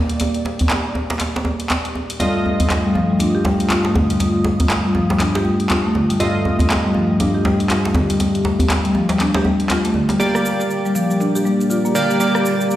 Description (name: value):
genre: afro house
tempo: 120 BPM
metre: 4/4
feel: swing 60% on 16ths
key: G minor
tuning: A4 = 439 Hz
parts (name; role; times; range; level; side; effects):
- dark analog pad; sustained chords; 0.0-12.8 s; G2 to Eb6; -23 LUFS; left 1 dB; chorus
- warm analog keys; stabs; 0.0-12.8 s; G2 to Eb5; -23 LUFS; right 2 dB; chorus, low-pass filter, digital delay
- afro-pop drum kit; drums; 0.1-12.8 s; handclaps, hi-hat, rim click, shaker, toms; -25 LUFS; equal; high-pass filter on hats, studio reverb, high-pass filter on snare, high-pass filter on toms, high-pass filter on perc
- djembe; percussion; 0.2-10.2 s; none; -22 LUFS; equal; none
- buzzing marimba with medium mallets; arpeggios; 2.2-12.3 s; D3 to G4; -19 LUFS; left 1 dB; digital delay
room: moderate lush hall reverb, RT60 2.1 s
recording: played on a big sound system in a bare room, stone room reverb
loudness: -15 LUFS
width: side -13 dB against mid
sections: 0.0-10.2 A section; 10.2-12.8 B section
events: build-up 10.2-12.8; drum fill 10.2-12.8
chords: 0.0 Gm; 2.2 F7/G; 10.2 Gm